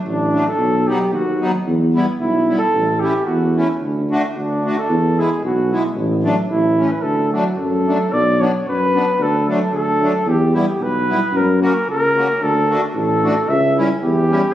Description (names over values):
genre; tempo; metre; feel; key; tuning
alpine folk, alpine dance band; 112 BPM; 2/4; straight; D major, B minor from 8.1 s; A4 = 440 Hz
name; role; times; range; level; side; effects
warm tuba; bass; 0.0-14.4 s; A1 to F#2; -19 LUFS; equal; none
warm flugelhorn; melody; 0.1-14.5 s; D4 to E5; -18 LUFS; right 1 dB; none
accordion; accompaniment; 0.3-14.4 s; E3 to F#4; -22 LUFS; left 1 dB; light tremolo tuning
room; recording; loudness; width
moderate concert hall reverb, RT60 2.0 s; recorded on a phone in the room, club reverb; -15 LUFS; side -12 dB against mid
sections
0.0-8.1 A section; 8.1-14.5 B section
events
none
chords
0.0 D; 0.6 B; 1.7 Em; 2.7 A; 3.8 D; 4.9 E; 6.0 D/A; 6.5 A; 7.0 D; 8.1 Bm; 9.2 D; 10.3 Em; 11.3 F#; 12.4 D; 13.5 C#dim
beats
0.04 | 0.58 1.12 | 1.66 2.20 | 2.74 3.28 | 3.82 4.36 | 4.90 5.43 | 5.97 6.50 | 7.04 7.58 | 8.12 8.66 | 9.20 9.73 | 10.27 10.80 | 11.34 11.88 | 12.41 12.95 | 13.49 14.02